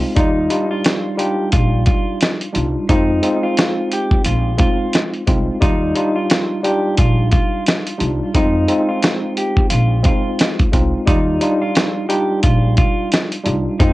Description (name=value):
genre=hip hop, boom-bap hip-hop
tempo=88 BPM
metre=4/4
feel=swing 59% on 16ths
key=Eb major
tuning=A4 = 440 Hz
part: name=tine electric piano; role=accompaniment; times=0.0-13.9 s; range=G3 to D5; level=-20 LUFS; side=equal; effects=overdrive, fast stereo tremolo, high-pass filter, low-pass filter, cassette tape
part: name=electric guitar at the edge of break-up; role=melody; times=0.2-13.9 s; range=Eb4 to G4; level=-22 LUFS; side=equal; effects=high-pass filter, low-pass filter, cassette tape, tape echo
part: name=upright bass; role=bass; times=0.2-13.9 s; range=Bb1 to F2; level=-19 LUFS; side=equal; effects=none
part: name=dusty soul sampler-style drum kit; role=drums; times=0.2-13.9 s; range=hi-hat, kick drum, snare drum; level=-16 LUFS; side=equal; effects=cassette tape
room=light reverb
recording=home recording on cassette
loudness=-14 LUFS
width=side -18 dB against mid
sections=0.2-13.9 A section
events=none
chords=0.2 Ebmaj9; 2.9 Fm7; 5.6 Ebmaj9; 8.3 Fm7; 11.1 Ebmaj9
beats=| 0.17 0.85 1.53 2.21 | 2.89 3.58 4.26 4.94 | 5.62 6.30 6.98 7.67 | 8.35 9.03 9.71 10.39 | 11.07 11.76 12.44 13.12 | 13.80